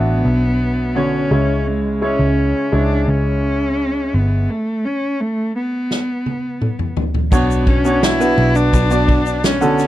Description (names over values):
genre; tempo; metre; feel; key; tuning
piano-driven pop; 85 BPM; 4/4; straight; B minor; A4 = 441 Hz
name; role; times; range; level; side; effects
warm cello; melody; 0.0-9.9 s; G#3 to E4; -19 LUFS; left 1 dB; none
clear concert grand piano; accompaniment; 0.0-9.9 s; B2 to E5; -19 LUFS; right 1 dB; none
vintage muted picked electric bass; bass; 0.0-9.9 s; G1 to C#2; -18 LUFS; equal; none
unplugged drum kit; drums; 5.9-9.9 s; crash cymbal, kick drum, ride cymbal, snare drum, toms; -18 LUFS; equal; none
egg shaker; percussion; 7.3-9.9 s; none; -36 LUFS; left 11 dB; none
room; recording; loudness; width
little or no reverb; none; -15 LUFS; side -14 dB against mid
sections
0.0-7.3 A section; 7.3-9.9 B section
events
stop 4.5-7.3; drum fill 5.9-7.3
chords
0.0 Bmadd9; 1.3 C#m; 4.5 N.C.; 7.3 Bmadd9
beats
0.25 0.96 | 1.67 2.37 3.08 3.79 | 4.49 5.20 5.91 6.61 | 7.32 8.03 8.73 9.44